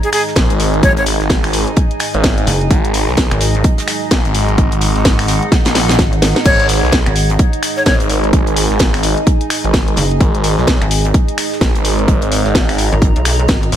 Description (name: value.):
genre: bass house.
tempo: 128 BPM.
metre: 4/4.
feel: swing 60% on 16ths.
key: unclear.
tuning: A4 = 440 Hz.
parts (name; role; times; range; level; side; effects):
breathy bright jazz flute; melody; 0.0-1.0, 6.5-8.0 s; G#4 to C#5; -18 LUFS; left 1 dB; ping-pong delay.
dark analog pad; sustained chords; 0.0-13.8 s; G#3 to D#5; -31 LUFS; right 5 dB; none.
house drum kit; drums; 0.0-13.8 s; crash cymbal, finger snaps, hi-hat, snare drum; -18 LUFS; left 1 dB; none.
warbly tape-like pad; texture; 0.0-13.8 s; D#4 to A#5; -21 LUFS; right 2 dB; chorus, built-in reverb, sidechain pumping.
damped 70s drum kit; drums; 0.1-13.8 s; hi-hat, snare drum; -28 LUFS; right 5 dB; sidechain pumping on hats, high-pass filter on hats, high-pass filter on snare, high-pass filter on room.
phased detuned saw bass; bass; 0.4-13.8 s; G#1 to B1; -16 LUFS; equal; phaser, overdrive, sidechain pumping.
electronic kick drum; drums; 0.4-13.6 s; none; -13 LUFS; equal; none.
pulsing pluck wobble bass; bass; 2.5-13.7 s; F#1 to B1; -15 LUFS; equal; chorus, overdrive, sidechain pumping.
room: little or no reverb.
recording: none.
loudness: -11 LUFS.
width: side -10 dB against mid.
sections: 0.0-13.8 A section.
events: drum fill 5.5-6.5.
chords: 0.0 G#5.